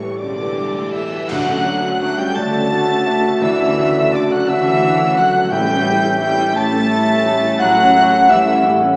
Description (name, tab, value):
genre	cinematic, emotional film score for orchestra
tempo	58 BPM (dotted quarters)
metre	6/8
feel	rubato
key	D major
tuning	A4 = 440 Hz
part	warm chamber violin section	melody	0.0-8.6 s	C#6 to A6	-24 LUFS	equal	none
part	warm symphonic violin section	second line	0.0-8.6 s	C#5 to A5	-23 LUFS	equal	none
part	dark grand piano	accompaniment	0.0-9.0 s	D2 to A4	-23 LUFS	equal	none
part	dark symphonic viola section	accompaniment	0.0-9.0 s	C#3 to A4	-24 LUFS	equal	none
part	warm French horn section	sustained chords	0.0-9.0 s	A3 to G4	-22 LUFS	equal	none
part	dark symphonic double bass section	bass	0.0-9.0 s	E1 to D2	-27 LUFS	equal	none
part	rich symphonic cello section	bass	0.0-8.6 s	E2 to A3	-23 LUFS	equal	none
part	mellow hollow silver concert flute	second line	0.2-8.6 s	D5 to A5	-20 LUFS	equal	none
part	clash cymbals and concert bass drum	percussion	1.3-2.7 s	none	-32 LUFS	equal	none
part	dark clarinet	second line	2.4-9.0 s	D5 to F#5	-18 LUFS	equal	none
part	timpani	percussion	5.5-6.5 s	A2	-26 LUFS	equal	none
room	wet scoring stage reverb, RT60 1.5 s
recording	heard from further back in the room, small speaker sound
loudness	-13 LUFS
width	side -39 dB against mid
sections	0.0-1.3 A section; 1.3-9.0 B section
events	band accent 1.3-2.0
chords	0.0 A7; 1.3 Dmaj7; 5.5 A7